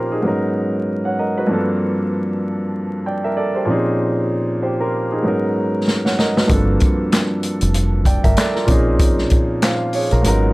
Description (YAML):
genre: hip hop, boom-bap hip-hop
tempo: 96 BPM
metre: 4/4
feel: swing 58% on 16ths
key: unclear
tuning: A4 = 440 Hz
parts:
  - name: dark baby grand piano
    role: accompaniment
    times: 0.0-10.5 s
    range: G2 to G5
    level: -18 LUFS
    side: equal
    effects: high-pass filter, low-pass filter
  - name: vintage drum kit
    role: drums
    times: 5.9-10.4 s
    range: handclaps, hi-hat, kick drum, snare drum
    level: -17 LUFS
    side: equal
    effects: none
  - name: deep dub fingered electric bass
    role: bass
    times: 6.5-10.5 s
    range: F1 to Bb1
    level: -17 LUFS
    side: equal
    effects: none
room: light reverb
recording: vinyl crackle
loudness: -16 LUFS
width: side -21 dB against mid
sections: 0.0-6.5 A section; 6.5-10.5 B section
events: drum fill 5.9-6.5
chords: 0.2 Abm11; 1.5 Gm11; 3.7 Bbm11; 5.2 Abm11; 6.5 Gm11; 8.7 Bbm11